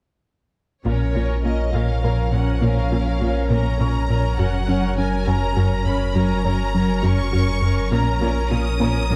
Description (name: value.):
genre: cinematic, hybrid orchestral and electronic film score.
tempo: 68 BPM (dotted quarters).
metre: 6/8.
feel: straight.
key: Bb minor.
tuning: A4 = 442 Hz.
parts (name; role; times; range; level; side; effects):
brassy analog pad; sustained chords; 0.8-9.2 s; F3 to Db5; -30 LUFS; equal; chorus.
rich symphonic cello section; bass; 0.8-9.2 s; Gb2 to Bb2; -29 LUFS; equal; none.
rich symphonic violin section; melody; 0.9-9.2 s; Db5 to Eb6; -31 LUFS; equal; none.
rich chamber viola section; accompaniment; 0.9-9.2 s; Db4 to Bb4; -30 LUFS; equal; none.
analog pluck; arpeggios; 0.9-9.2 s; Gb3 to Bb4; -32 LUFS; equal; chorus.
rubbery square bass; riff; 0.9-9.2 s; Gb2 to Bb3; -26 LUFS; equal; none.
sub bass with octave; bass; 0.9-9.2 s; Gb1 to Bb1; -26 LUFS; equal; none.
dark grand piano; texture; 2.0-9.2 s; Bb4 to Db6; -38 LUFS; equal; none.
room: wet recital hall reverb, RT60 1.7 s.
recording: dark, warm production.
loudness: -20 LUFS.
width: mono.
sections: 0.9-9.2 A section.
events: none.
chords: 0.9 Bbm; 4.4 Gb; 7.9 Bbm.